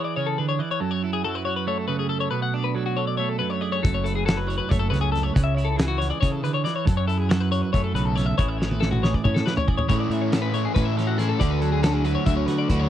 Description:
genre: math rock and midwest emo.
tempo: 278 BPM (eighths).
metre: 7/8.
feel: straight.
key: unclear.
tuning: A4 = 440 Hz.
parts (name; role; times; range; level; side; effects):
twelve-string electric guitar; accompaniment; 0.0-12.9 s; F#2 to A4; -26 LUFS; right 6 dB; none.
twelve-string electric guitar; arpeggios; 0.0-12.9 s; F#4 to F#5; -27 LUFS; left 8 dB; none.
fuzz fingered electric bass; bass; 3.8-12.9 s; F#1 to D3; -26 LUFS; equal; overdrive.
loose indie drum kit; drums; 3.8-12.8 s; hi-hat, kick drum, snare drum, toms; -23 LUFS; equal; none.
crunchy overdriven guitar; riff; 9.9-12.9 s; A2 to F#4; -26 LUFS; left 2 dB; none.
room: little or no reverb.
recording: dry, close 1970s-style studio recording.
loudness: -21 LUFS.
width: side -11 dB against mid.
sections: 0.0-9.9 A section; 9.9-12.9 B section.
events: drum fill 8.6-9.9.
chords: 0.0 C#m7; 0.8 F#m7; 2.3 Bm7; 3.8 F#m7; 5.4 C#m; 6.9 F#m7; 8.4 Amaj9; 11.4 Dmaj9#11.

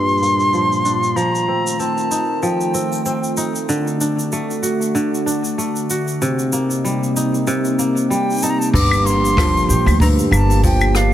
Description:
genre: folktronica.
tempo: 95 BPM.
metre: 4/4.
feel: swing 56% on 16ths.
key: G minor.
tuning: A4 = 443 Hz.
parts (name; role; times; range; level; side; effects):
silver concert flute; melody; 0.0-3.4, 8.1-11.1 s; F5 to D6; -20 LUFS; left 1 dB; tape echo.
warbly tape-like pad; sustained chords; 0.0-11.1 s; Bb2 to G4; -23 LUFS; equal; chorus, built-in reverb.
kora; arpeggios; 0.0-11.1 s; G2 to G4; -20 LUFS; equal; low-pass filter, tape echo.
jazz brush drum kit; drums; 0.1-11.1 s; claves, crash cymbal, hi-hat, rim click, shaker; -25 LUFS; equal; low-pass filter on hats, low-pass filter on cymbals, low-pass filter on snare, low-pass filter on perc, low-pass filter on room.
upright bass; bass; 8.7-11.1 s; G1 to D2; -17 LUFS; equal; none.
kick drum; drums; 8.7-10.8 s; none; -18 LUFS; equal; none.
room: light reverb.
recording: none.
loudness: -15 LUFS.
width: side -12 dB against mid.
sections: 0.0-8.7 A section; 8.7-11.1 B section.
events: filter sweep on kora 0.0-8.7.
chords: 0.0 Gm7; 1.2 F7; 3.7 D; 6.2 Cm7; 8.7 Gm7.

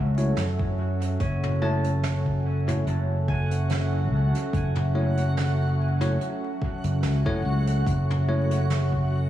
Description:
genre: ambient dub.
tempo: 72 BPM.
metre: 4/4.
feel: swing 54% on 16ths.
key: F# minor.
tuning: A4 = 440 Hz.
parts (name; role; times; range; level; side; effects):
warbly tape-like pad; sustained chords; 0.0-9.3 s; F#3 to E5; -32 LUFS; equal; chorus, built-in reverb.
concert harp; arpeggios; 0.0-7.4 s; C#4 to A5; -38 LUFS; equal; dub echo.
fingered electric bass; bass; 0.0-9.3 s; F#1 to F#2; -24 LUFS; equal; none.
bell-like tine electric piano; stabs; 0.2-8.6 s; A3 to C#5; -33 LUFS; left 2 dB; dub echo.
vintage brush drum kit; drums; 0.2-8.9 s; hi-hat, snare drum, toms; -36 LUFS; right 2 dB; dub echo.
electronic kick drum; drums; 0.6-9.1 s; none; -30 LUFS; equal; none.
backwards swelling texture; texture; 2.3-9.3 s; F#4 to F#5; -37 LUFS; equal; built-in reverb.
room: light reverb, small room ambience.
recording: vinyl crackle, studio reverb.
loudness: -22 LUFS.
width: side -12 dB against mid.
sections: 0.0-9.3 A section.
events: none.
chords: 0.0 F#m7.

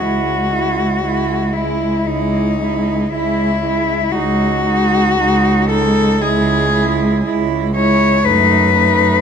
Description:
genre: classical, lyrical piece for cello ensemble.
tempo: 58 BPM.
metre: 4/4.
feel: rubato.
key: C# minor.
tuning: A4 = 440 Hz.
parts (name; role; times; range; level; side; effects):
rich cello; melody; 0.0-9.2 s; D#4 to C#5; -16 LUFS; left 5 dB; none.
rich cello; second line; 0.0-9.2 s; D#4 to E4; -21 LUFS; right 10 dB; none.
rich cello; accompaniment; 0.0-9.2 s; G#3 to A3; -20 LUFS; left 1 dB; none.
rich cello; bass; 0.0-9.1 s; C#2 to F#2; -19 LUFS; right 2 dB; none.
room: moderate recital hall reverb, RT60 1.4 s.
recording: close, detailed microphones.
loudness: -13 LUFS.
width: side -7 dB against mid.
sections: 0.0-9.2 A section.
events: none.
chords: 0.0 C#m; 8.2 D#dim/F#.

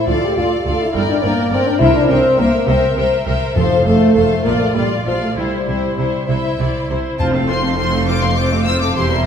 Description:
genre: quick classical-period movement for symphony orchestra.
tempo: 68 BPM (dotted quarters).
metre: 6/8.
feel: rubato.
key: F major.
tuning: A4 = 441 Hz.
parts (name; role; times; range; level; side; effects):
clear chamber violin section; melody; 0.0-9.2 s; C5 to E6; -25 LUFS; left 3 dB; none.
clear chamber violin section; second line; 0.0-9.3 s; A4 to F5; -23 LUFS; left 2 dB; none.
clear symphonic viola section; accompaniment; 0.0-9.3 s; E3 to Bb4; -23 LUFS; right 1 dB; none.
clear French horn section; sustained chords; 0.0-6.3 s; F3 to G4; -16 LUFS; left 1 dB; none.
clear studio double bass section; bass; 0.1-9.3 s; E1 to D2; -22 LUFS; right 2 dB; none.
rich symphonic cello section; bass; 0.1-9.3 s; D2 to C3; -23 LUFS; right 2 dB; none.
timpani; percussion; 1.8-4.4, 7.2-8.0 s; F2 to C3; -24 LUFS; left 1 dB; none.
room: wet recital hall reverb, RT60 1.4 s.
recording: heard from further back in the room.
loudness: -13 LUFS.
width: side -8 dB against mid.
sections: 0.0-7.2 A section; 7.2-9.3 B section.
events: none.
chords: 0.1 Dm; 0.9 Gm; 1.8 C7; 3.6 F; 4.5 Bb; 5.4 C; 7.2 F.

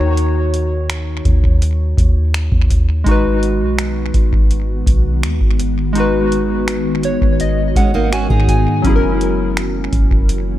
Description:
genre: contemporary R&B.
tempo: 83 BPM.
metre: 4/4.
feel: straight.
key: G# minor.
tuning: A4 = 439 Hz.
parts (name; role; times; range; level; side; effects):
warm analog keys; accompaniment; 0.0-10.6 s; D#3 to G#5; -20 LUFS; left 1 dB; chorus, tape echo.
soft 808-style bass; bass; 0.0-10.6 s; F#1 to G#2; -18 LUFS; equal; none.
booming analog drum machine; drums; 0.2-10.5 s; finger snaps, hi-hat, kick drum; -15 LUFS; equal; none.
ethereal airy pad; sustained chords; 3.6-10.6 s; D#3 to F#4; -22 LUFS; left 1 dB; ensemble chorus, built-in reverb.
fingerpicked steel-string acoustic guitar; arpeggios; 7.8-8.8 s; G#3 to G#4; -21 LUFS; right 4 dB; tape echo.
room: digital ambience.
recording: echo-heavy mix.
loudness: -13 LUFS.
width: side -13 dB against mid.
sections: 0.0-10.6 A section.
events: synth keys fill 6.7-8.8.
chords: 0.0 D#m7; 3.1 G#m7; 8.8 F#7.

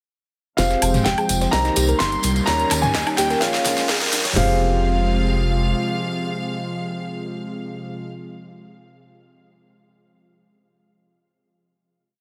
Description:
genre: progressive house.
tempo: 127 BPM.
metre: 4/4.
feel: straight.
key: F minor.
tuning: A4 = 440 Hz.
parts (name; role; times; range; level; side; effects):
clear concert grand piano; melody; 0.6-8.0 s; F5 to C6; -27 LUFS; equal; low-pass filter, delay.
clear studio violin section; second line; 0.6-8.0 s; F5 to C6; -35 LUFS; equal; sidechain pumping, low-pass filter, tape echo.
lush unison pad; sustained chords; 0.6-8.0 s; C3 to G5; -29 LUFS; equal; chorus, sidechain pumping.
soft round pluck; arpeggios; 0.6-4.6 s; Eb4 to Eb5; -32 LUFS; equal; analog chorus, sidechain pumping, tape echo.
dark concert grand piano; stabs; 0.6-8.0 s; G3 to Db5; -30 LUFS; equal; sidechain pumping, tape echo.
tight sequencer bass; bass; 0.6-5.7 s; F1 to F2; -25 LUFS; equal; sidechain pumping.
big-room dance drum kit; drums; 0.6-4.5 s; hi-hat, kick drum, snare drum, toms; -28 LUFS; equal; high-pass filter on kick, high-pass filter on snare, high-pass filter on toms, high-pass filter on hats, high-pass filter on room.
big-room dance drum kit; drums; 0.6-4.4 s; hi-hat, snare drum, woodblock; -28 LUFS; equal; high-pass filter on snare, sidechain pumping on hats, high-pass filter on hats, sidechain pumping on perc, high-pass filter on perc, high-pass filter on room.
dusty soul sampler-style drum kit; drums; 0.6-4.2 s; hi-hat, snare drum; -34 LUFS; equal; none.
tambourine; percussion; 0.6-4.3 s; none; -32 LUFS; equal; none.
riser; sound effects; 1.9-4.4 s; none; -34 LUFS; equal; none.
electronic toms and congas; percussion; 0.9-4.3 s; none; -29 LUFS; equal; overdrive, sidechain pumping on toms, sidechain pumping on perc.
room: light reverb, digital ambience.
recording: high-pass filter.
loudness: -20 LUFS.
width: mono.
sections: 0.6-4.4 build; 4.4-8.1 final chord.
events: build-up 0.6-4.4; drum fill 0.6-4.4; filter sweep on synth pluck 0.6-4.4; filter sweep 0.6-4.4; riser 1.9-4.4.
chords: 0.6 Fmadd9; 1.5 Cm7; 2.5 Eb7; 3.4 Bbm7; 4.4 Fmadd9.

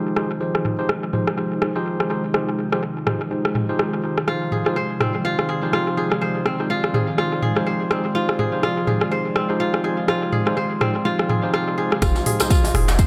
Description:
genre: afro house.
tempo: 124 BPM.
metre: 4/4.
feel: swing 58% on 16ths.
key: F dorian.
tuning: A4 = 440 Hz.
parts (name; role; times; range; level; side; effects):
ethereal airy pad; sustained chords; 0.0-13.1 s; C3 to D5; -30 LUFS; equal; ensemble chorus, built-in reverb, sidechain pumping.
bright tine electric piano; stabs; 0.0-13.1 s; F3 to C5; -28 LUFS; equal; sidechain pumping, tape echo.
afro-pop drum kit; drums; 0.2-13.1 s; hi-hat, rim click, toms; -26 LUFS; equal; low-pass filter on snare, studio reverb, low-pass filter on toms, low-pass filter on hats, tape echo.
kora; arpeggios; 4.3-13.1 s; C4 to C5; -26 LUFS; equal; sidechain pumping, dub echo.
warm 808-style bass; bass; 12.0-13.1 s; F1; -22 LUFS; equal; sidechain pumping.
electronic kick drum; drums; 12.0-13.1 s; none; -19 LUFS; equal; overdrive, studio reverb.
tambourine; percussion; 12.0-13.1 s; none; -32 LUFS; equal; tape echo.
djembe; percussion; 12.2-13.0 s; none; -30 LUFS; equal; tape echo.
room: moderate plate reverb, RT60 2.5 s.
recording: echo-heavy mix.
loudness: -21 LUFS.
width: mono.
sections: 0.0-12.0 A section; 12.0-13.1 B section.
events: filter sweep on ambient pad 0.0-12.0; drop 12.0-13.1.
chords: 0.0 Fm7.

